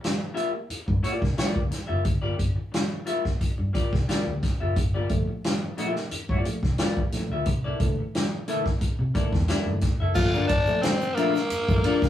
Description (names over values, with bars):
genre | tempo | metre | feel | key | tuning
funk | 89 BPM | 4/4 | straight | G dorian | A4 = 440 Hz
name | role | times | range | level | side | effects
semi-hollow electric guitar | accompaniment | 0.0-12.1 s | Bb3 to E5 | -29 LUFS | left 3 dB | none
vintage drum kit | drums | 0.0-12.1 s | crash cymbal, hi-hat, kick drum, ride cymbal, snare drum | -26 LUFS | equal | none
vintage muted fingered electric bass | bass | 0.7-12.1 s | F#1 to C3 | -28 LUFS | equal | none
mellow tine electric piano | stabs | 4.8-11.9 s | G2 to A3 | -33 LUFS | right 1 dB | none
breathy tenor saxophone | melody | 10.2-12.1 s | Bb3 to F4 | -25 LUFS | left 1 dB | none
egg shaker | percussion | 10.2-12.1 s | none | -52 LUFS | left 4 dB | none
room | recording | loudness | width
moderate studio reverb, RT60 0.6 s | rough rehearsal-room recording, small room ambience | -23 LUFS | side -11 dB against mid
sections
0.0-10.2 A section; 10.2-12.1 B section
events
none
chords
0.0 Gm7; 7.5 C13; 10.2 Gm7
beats
0.03 0.70 1.38 | 2.06 2.74 3.41 4.09 | 4.77 5.44 6.12 6.79 | 7.47 8.14 8.82 9.49 | 10.17 10.84 11.51